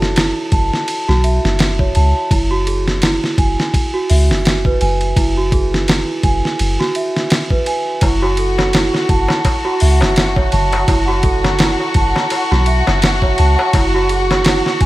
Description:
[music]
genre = trip hop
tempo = 84 BPM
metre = 4/4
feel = swing 56% on 16ths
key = F# minor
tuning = A4 = 441 Hz
[part]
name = large celesta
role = arpeggios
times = 0.0-14.9 s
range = E4 to A5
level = -18 LUFS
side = right 2 dB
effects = tape echo
[part]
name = soft 808-style bass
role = bass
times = 0.0-14.9 s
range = F#1 to C#2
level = -16 LUFS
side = equal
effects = none
[part]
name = dusty soul sampler-style drum kit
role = drums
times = 0.0-14.9 s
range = hi-hat, kick drum, ride cymbal, snare drum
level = -17 LUFS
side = equal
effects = none
[part]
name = warm studio violin section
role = sustained chords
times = 8.0-14.9 s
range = F#4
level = -20 LUFS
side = left 1 dB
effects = vintage 12-bit sampler grit
[part]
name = darbuka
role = percussion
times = 8.0-14.8 s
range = none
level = -25 LUFS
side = left 2 dB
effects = none
[sound]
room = studio reverb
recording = vinyl crackle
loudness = -12 LUFS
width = side -17 dB against mid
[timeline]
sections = 0.0-14.9 A section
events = none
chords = 0.0 F#m7; 2.3 Eadd9/F#; 8.0 F#m7; 13.7 Eadd9/F#

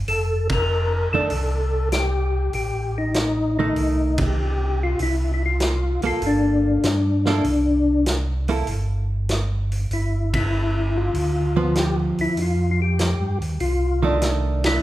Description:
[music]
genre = soul jazz organ trio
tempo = 98 BPM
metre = 4/4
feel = swing 69% on 8ths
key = unclear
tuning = A4 = 441 Hz
[part]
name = mellow tonewheel organ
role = bass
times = 0.0-14.8 s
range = F1 to G2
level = -22 LUFS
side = right 1 dB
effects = chorus vibrato, slow rotary speaker
[part]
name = percussive tonewheel organ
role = melody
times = 0.1-14.8 s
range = D4 to Bb4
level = -23 LUFS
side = left 2 dB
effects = slow rotary speaker, chorus vibrato
[part]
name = vintage drum kit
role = drums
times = 0.1-14.7 s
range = hi-hat, kick drum, ride cymbal, snare drum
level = -28 LUFS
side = equal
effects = none
[part]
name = archtop guitar, miked and amplified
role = accompaniment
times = 1.1-14.8 s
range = Eb3 to A4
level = -25 LUFS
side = right 4 dB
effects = none
[sound]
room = wet recital hall reverb, RT60 1.5 s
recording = recorded in a church or concert hall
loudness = -19 LUFS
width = side -15 dB against mid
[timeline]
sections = 0.0-14.8 A section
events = band accent 0.4-0.7, 4.1-4.4, 10.2-10.5, 14.5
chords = 0.1 F9; 5.0 C7sus2; 9.9 G6; 12.4 F13

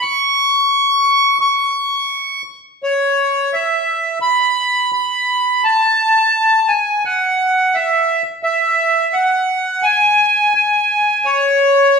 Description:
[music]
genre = rock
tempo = 86 BPM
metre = 4/4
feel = straight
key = unclear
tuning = A4 = 442 Hz
[part]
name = accordion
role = melody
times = 0.0-12.0 s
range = C#5 to C#6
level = -12 LUFS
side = equal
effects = none
[sound]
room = wet stone room reverb, RT60 1.1 s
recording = band playing live in one room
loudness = -13 LUFS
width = side -5 dB against mid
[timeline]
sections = 0.0-12.0 A section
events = none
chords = none

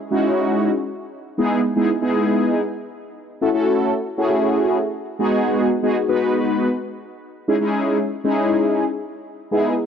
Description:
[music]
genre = pop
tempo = 118 BPM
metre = 4/4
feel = straight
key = unclear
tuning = A4 = 440 Hz
[part]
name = mellow synth brass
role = solo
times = 0.1-9.7 s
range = G#3 to B4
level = -18 LUFS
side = equal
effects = chorus, phaser
[sound]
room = light reverb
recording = worn, warbling old tape, cassette tape, warbly pitch drift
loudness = -17 LUFS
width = side -7 dB against mid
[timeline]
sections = 0.0-9.9 A section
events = none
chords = 0.0 C#madd9; 1.4 Emaj7; 3.4 F#m7; 5.2 G#m7; 7.5 C#madd9

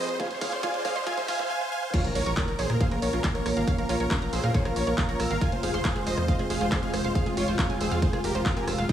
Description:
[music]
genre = uplifting trance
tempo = 138 BPM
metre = 4/4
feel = straight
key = F minor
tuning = A4 = 440 Hz
[part]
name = big supersaw lead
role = melody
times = 0.0-8.9 s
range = F4 to Ab5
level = -30 LUFS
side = equal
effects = sidechain pumping, tape echo
[part]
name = lush unison pad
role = sustained chords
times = 0.0-8.9 s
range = F2 to Bb4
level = -32 LUFS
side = equal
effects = chorus, sidechain pumping
[part]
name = analog pluck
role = arpeggios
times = 0.0-8.9 s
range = Eb4 to E6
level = -34 LUFS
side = right 3 dB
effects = chorus, sidechain pumping, dub echo
[part]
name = riser and impact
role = sound effects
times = 0.0-3.7 s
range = none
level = -36 LUFS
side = equal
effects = none
[part]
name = punchy analog drum machine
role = drums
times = 0.1-8.9 s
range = crash cymbal, handclaps, hi-hat, rim click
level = -34 LUFS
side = equal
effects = none
[part]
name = electronic kick drum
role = drums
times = 0.2-8.9 s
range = none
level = -27 LUFS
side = equal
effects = none
[part]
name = tight sequencer bass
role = bass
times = 2.0-8.9 s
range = Eb1 to Bb2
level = -30 LUFS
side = equal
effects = tube saturation, sidechain pumping
[sound]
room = light reverb, digital ambience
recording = high-pass filter, studio reverb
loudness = -24 LUFS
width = side -10 dB against mid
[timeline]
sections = 0.0-1.9 A section; 1.9-8.9 B section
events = build-up 0.0-1.9; drum fill 0.0-1.5; riser 0.0-1.5; filter sweep on synth arpeggio sound 0.0-1.9; drop 1.9-8.9; impact 1.9-3.7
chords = 0.0 Fm; 1.9 Bbm; 5.4 Fm

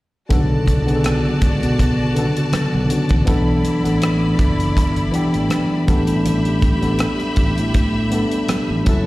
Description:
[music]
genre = lush 1970s-style soul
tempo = 81 BPM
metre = 4/4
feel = swing 54% on 16ths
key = B minor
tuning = A4 = 441 Hz
[part]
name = bright studio string section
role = second line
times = 0.3-9.1 s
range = E4 to B5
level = -27 LUFS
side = equal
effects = slapback echo
[part]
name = tine electric piano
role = accompaniment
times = 0.3-9.1 s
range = C#3 to A4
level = -19 LUFS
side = left 1 dB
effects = overdrive
[part]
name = overdriven fingered electric bass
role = bass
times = 0.3-9.1 s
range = F#1 to B2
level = -20 LUFS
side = equal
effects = none
[part]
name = tight funk drum kit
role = drums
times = 0.3-9.1 s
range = hi-hat, kick drum, rim click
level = -20 LUFS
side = equal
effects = none
[part]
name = congas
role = percussion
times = 0.3-9.1 s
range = none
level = -31 LUFS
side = right 4 dB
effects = none
[sound]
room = small room ambience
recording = live gig heard through the venue's PA, recital hall reverb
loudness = -15 LUFS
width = side -18 dB against mid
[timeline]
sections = 0.3-9.1 A section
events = none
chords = 0.3 Bm9; 3.3 E7sus4; 5.9 A9sus4

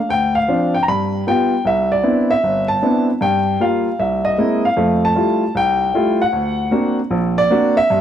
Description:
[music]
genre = solo jazz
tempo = 154 BPM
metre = 4/4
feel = swing 64% on 8ths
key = C major, F major from 4.8 s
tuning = A4 = 439 Hz
[part]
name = warm baby grand piano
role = solo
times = 0.0-8.0 s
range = G1 to B5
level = -14 LUFS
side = equal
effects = none
[sound]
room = light reverb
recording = vinyl crackle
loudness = -14 LUFS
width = side -10 dB against mid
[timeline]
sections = 0.0-4.8 A section; 4.8-8.0 B section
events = none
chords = 0.1 Dm7; 0.9 G7; 1.7 Cmaj9; 3.2 Gm7; 4.0 C7alt; 4.8 Fmaj9; 6.3 Daug7

